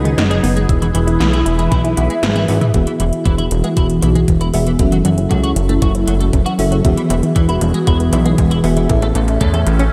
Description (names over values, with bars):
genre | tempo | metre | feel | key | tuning
synthwave | 117 BPM | 4/4 | straight | unclear | A4 = 440 Hz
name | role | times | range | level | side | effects
phased analog pad | sustained chords | 0.0-9.9 s | E3 to B4 | -22 LUFS | equal | phaser, chorus
analog pluck | arpeggios | 0.0-9.9 s | D#3 to E4 | -24 LUFS | equal | chorus, phaser, cassette tape, analog delay
twelve-string electric guitar | riff | 0.0-9.8 s | E3 to A4 | -27 LUFS | equal | analog chorus, low-pass filter, analog delay
chorused synth bass | bass | 0.0-9.9 s | E1 to E2 | -19 LUFS | equal | none
80s electronic pad drums | drums | 0.1-9.9 s | hi-hat, snare drum, toms | -26 LUFS | equal | gated reverb on snare and toms, overdrive, high-pass filter on hats, high-pass filter on snare, high-pass filter on toms
electronic kick drum | drums | 0.7-9.5 s | none | -18 LUFS | equal | none
FM electric piano with soft pad layer | stabs | 2.7-9.9 s | A2 to E5 | -23 LUFS | equal | chorus, low-pass filter, analog delay
room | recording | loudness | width
moderate lush hall reverb, RT60 1.7 s, digital ambience | dreamy mix soaked in reverb | -15 LUFS | mono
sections
0.0-2.7 A section; 2.7-9.9 B section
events
drum fill 2.2-2.7, 2.7-9.9; filter sweep on analog synth pad 2.7-9.9; filter sweep on synth arpeggio sound 2.7-9.9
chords
0.0 G#m/F#; 0.7 E; 2.7 Eadd9; 4.8 F#m7; 6.8 Eadd9; 8.9 Amaj7